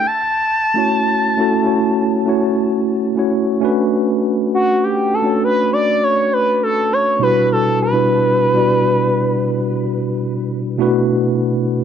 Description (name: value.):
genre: R&B.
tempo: 67 BPM.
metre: 4/4.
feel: swing 59% on 16ths.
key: B minor.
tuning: A4 = 440 Hz.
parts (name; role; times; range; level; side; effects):
expressive portamento lead; melody; 0.0-10.0 s; F#4 to A5; -16 LUFS; equal; chorus, tape echo.
mellow tine electric piano; accompaniment; 0.0-11.8 s; B2 to D5; -16 LUFS; equal; medium stereo tremolo.
room: light reverb, digital ambience.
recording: dark, warm production.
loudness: -14 LUFS.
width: side -8 dB against mid.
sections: 0.0-3.6 A section; 3.6-11.8 B section.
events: analog synth lead solo 3.6-11.8.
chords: 0.0 F#m7; 3.6 Bm9; 7.2 Em9/B; 10.8 D6/B.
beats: | 0.04 0.93 1.83 2.72 | 3.62 4.51 5.41 6.30 | 7.20 8.10 8.99 9.89 | 10.78 11.68.